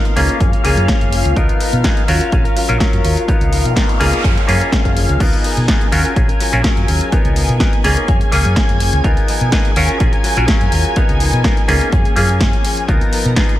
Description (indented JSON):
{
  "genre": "filtered disco house",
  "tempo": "125 BPM",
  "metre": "4/4",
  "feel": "straight",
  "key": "Db mixolydian",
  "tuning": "A4 = 437 Hz",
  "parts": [
    { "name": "bright clav", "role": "accompaniment", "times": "0.0-13.6 s", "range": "Gb3 to Db5", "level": "-21 LUFS", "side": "equal", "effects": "phaser, sidechain pumping, low-pass filter" },
    { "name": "string machine, full ensemble", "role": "sustained chords", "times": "0.0-13.6 s", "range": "F5 to Bb6", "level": "-22 LUFS", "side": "equal", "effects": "ensemble chorus, sidechain pumping, low-pass filter" },
    { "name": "direct-recorded clean electric guitar", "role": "riff", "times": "0.0-13.6 s", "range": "F3 to Bb4", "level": "-23 LUFS", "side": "left 4 dB", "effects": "harmonic tremolo, sidechain pumping, low-pass filter" },
    { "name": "house drum kit", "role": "drums", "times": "0.1-13.6 s", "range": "crash cymbal, finger snaps, hi-hat, snare drum", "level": "-22 LUFS", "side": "equal", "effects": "sidechain pumping on hats, studio reverb, sidechain pumping on cymbals" },
    { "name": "hollow-body short-scale fingered electric bass", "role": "bass", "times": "0.2-13.3 s", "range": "Gb1 to Cb3", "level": "-17 LUFS", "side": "equal", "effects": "sidechain pumping, low-pass filter" },
    { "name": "electronic kick drum", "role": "drums", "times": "0.4-13.5 s", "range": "none", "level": "-16 LUFS", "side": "equal", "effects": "studio reverb" },
    { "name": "noise sweep", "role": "sound effects", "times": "3.5-5.2 s", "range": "none", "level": "-26 LUFS", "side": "left 1 dB", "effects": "none" }
  ],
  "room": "light reverb, digital ambience",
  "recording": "none",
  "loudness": "-12 LUFS",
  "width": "side -14 dB against mid",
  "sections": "0.0-13.6 A section",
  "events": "noise sweep 3.5-5.2",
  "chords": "0.4 Gbmaj9; 1.4 Db13; 2.1 Ebm9; 3.3 Db13; 4.2 Gbmaj9; 5.2 Db13; 5.9 Ebm9; 7.1 Db13; 8.1 Gbmaj9; 9.0 Db13; 9.8 Ebm9; 11.0 Db13; 11.9 Gbmaj9; 12.9 Db13"
}